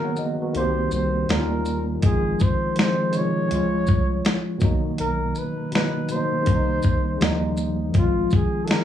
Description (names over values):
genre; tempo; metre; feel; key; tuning
lo-fi hip hop; 81 BPM; 4/4; swing 58% on 16ths; Ab major; A4 = 438 Hz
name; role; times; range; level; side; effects
breathy flugelhorn; melody; 0.0-8.8 s; F4 to Db5; -27 LUFS; equal; none
tine electric piano; accompaniment; 0.0-8.8 s; B2 to A#5; -24 LUFS; left 1 dB; overdrive, fast stereo tremolo, cassette tape
dusty soul sampler-style drum kit; drums; 0.2-8.8 s; finger snaps, hi-hat, kick drum, shaker, snare drum; -22 LUFS; left 1 dB; none
soft dub sub bass; bass; 0.6-8.3 s; Ab1 to Eb2; -27 LUFS; right 1 dB; none
room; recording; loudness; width
light reverb; cassette tape, small room ambience; -20 LUFS; side -10 dB against mid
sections
0.0-8.8 A section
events
break 0.0-2.0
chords
0.0 Bmaj7; 0.5 Cm7; 1.3 Eb9; 2.0 Ab6; 3.5 Dbmaj7; 4.6 Bmaj7; 6.5 Cm7; 7.2 Eb9; 8.0 Ab6